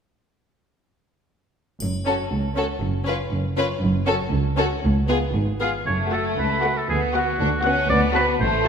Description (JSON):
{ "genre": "cinematic, playful, whimsical film cue", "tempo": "118 BPM", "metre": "2/4", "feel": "straight", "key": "F# minor", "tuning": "A4 = 440 Hz", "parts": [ { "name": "rich studio cello section", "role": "bass", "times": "1.8-8.7 s", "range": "C#2 to A2", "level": "-26 LUFS", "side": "right 1 dB", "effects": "none" }, { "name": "rich studio double bass section", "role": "bass", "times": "1.8-8.7 s", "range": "F#1 to D2", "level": "-26 LUFS", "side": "right 2 dB", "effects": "none" }, { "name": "triangle", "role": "percussion", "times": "1.8-2.8 s", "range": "none", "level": "-39 LUFS", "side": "left 3 dB", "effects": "none" }, { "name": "rich studio viola section", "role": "accompaniment", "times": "2.0-8.3 s", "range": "A3 to F#4", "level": "-28 LUFS", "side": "equal", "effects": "none" }, { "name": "rich studio violin section", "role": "melody", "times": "2.1-8.3 s", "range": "G#4 to A5", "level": "-28 LUFS", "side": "left 4 dB", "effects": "none" }, { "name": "rich studio violin section", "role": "second line", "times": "2.1-8.7 s", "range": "A3 to F#4", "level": "-27 LUFS", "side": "left 2 dB", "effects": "none" }, { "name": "clear oboe", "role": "second line", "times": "5.6-8.7 s", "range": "F#4 to F#5", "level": "-23 LUFS", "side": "equal", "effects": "none" } ], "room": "wet scoring stage reverb, RT60 1.7 s", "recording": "minimal, uncompressed stereo recording", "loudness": "-20 LUFS", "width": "side -6 dB against mid", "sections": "1.8-5.9 A section; 5.9-8.7 B section", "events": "none", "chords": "1.8 F#5; 4.8 C#7; 5.9 F#m; 6.9 Bm/D; 7.9 D7" }